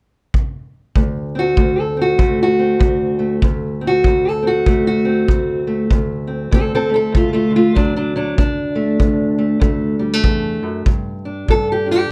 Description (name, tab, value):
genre	acoustic country blues, solo or duo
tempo	97 BPM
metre	4/4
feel	swing 61% on 8ths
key	D mixolydian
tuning	A4 = 437 Hz
part	kick drum	drums	0.3-11.7 s	none	-19 LUFS	equal	none
part	fingerpicked steel-string acoustic guitar	melody	1.0-12.1 s	D2 to A4	-18 LUFS	equal	none
room	little or no reverb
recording	none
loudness	-17 LUFS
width	mono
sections	1.0-12.1 A section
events	none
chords	0.0 N.C.; 1.0 D7; 10.9 G5